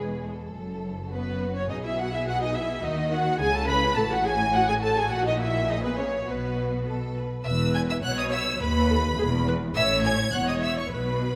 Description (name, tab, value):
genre	quick classical-period movement for string orchestra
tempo	105 BPM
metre	2/4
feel	straight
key	E major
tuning	A4 = 440 Hz
part	warm symphonic violin section	melody	0.0-11.4 s	E4 to G#6	-35 LUFS	equal	none
part	warm symphonic violin section	second line	0.0-11.4 s	G#4 to B5	-30 LUFS	equal	none
part	warm symphonic viola section	accompaniment	0.0-11.4 s	G#3 to C#5	-34 LUFS	equal	none
part	warm symphonic cello section	bass	0.0-11.4 s	D#2 to D#3	-33 LUFS	equal	none
part	warm symphonic double bass section	bass	0.0-11.4 s	E1 to D#2	-33 LUFS	equal	none
room	moderate scoring stage reverb, RT60 1.6 s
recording	none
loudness	-26 LUFS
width	mono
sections	0.0-7.5 A section; 7.5-11.4 B section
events	none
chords	0.0 E; 0.6 F#m; 1.7 Emaj9/B; 2.8 D#m; 3.4 C#m; 4.0 F#m/A; 5.1 F#/A#; 6.3 B5; 7.5 E5; 8.6 B7/D#; 9.2 E; 9.8 A